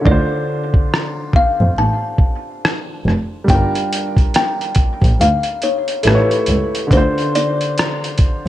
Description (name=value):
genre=lo-fi hip hop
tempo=70 BPM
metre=4/4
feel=swing 61% on 16ths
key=unclear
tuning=A4 = 438 Hz
part: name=warm upright piano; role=accompaniment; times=0.0-8.5 s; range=D3 to C#5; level=-22 LUFS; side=equal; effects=cassette tape, low-pass filter
part: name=kalimba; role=melody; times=0.1-8.5 s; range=B4 to A5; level=-20 LUFS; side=left 2 dB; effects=low-pass filter, analog delay
part: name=muted double bass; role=bass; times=0.1-7.0 s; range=F1 to F2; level=-17 LUFS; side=equal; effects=none
part: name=dusty soul sampler-style drum kit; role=drums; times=0.1-8.4 s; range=hi-hat, kick drum, rim click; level=-16 LUFS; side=equal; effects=none
room=moderate plate reverb, RT60 2.1 s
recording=dreamy mix soaked in reverb, cassette tape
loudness=-14 LUFS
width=side -13 dB against mid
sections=0.0-8.5 A section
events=break 0.0-3.5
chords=0.1 Dm7; 3.5 Gm7; 6.1 A7; 6.9 Dm7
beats=| 0.05 0.91 1.77 2.62 | 3.48 4.34 5.20 6.05 | 6.91 7.77